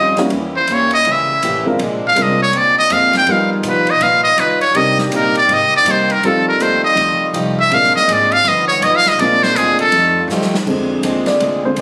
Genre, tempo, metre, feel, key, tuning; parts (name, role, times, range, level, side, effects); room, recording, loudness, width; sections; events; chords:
jazz, big band swing; 162 BPM; 4/4; swing 63% on 8ths; Bb mixolydian; A4 = 440 Hz
trumpet with metal mute; melody; 0.0-10.3 s; G4 to G5; -15 LUFS; equal
picked plugged-in swing-style acoustic guitar; accompaniment; 0.0-11.8 s; G2 to G4; -25 LUFS; equal
bright trombone section; sustained chords; 0.0-11.8 s; C3 to Ab4; -29 LUFS; equal
upright bass; bass; 0.0-11.8 s; G1 to D#3; -27 LUFS; equal
warm grand piano; accompaniment; 0.2-11.8 s; D3 to D5; -21 LUFS; equal
swinging big-band drum kit; drums; 0.2-11.8 s; crash cymbal, hi-hat, kick drum, ride cymbal, snare drum; -29 LUFS; equal
moderate large studio reverb, RT60 1.4 s; recorded on a phone in the room, club reverb; -14 LUFS; mono
0.0-10.7 A section; 10.7-11.8 A section
muted trumpet solo 0.0-10.7; drum fill 10.3-10.7; grand piano solo 10.7-11.8
0.3 Edim7; 1.8 Bb9; 3.3 G7alt; 4.8 Cm7; 6.2 F9; 7.7 Bb9; 8.4 Gaug7; 9.2 Bb9; 9.9 F9; 10.7 Bb9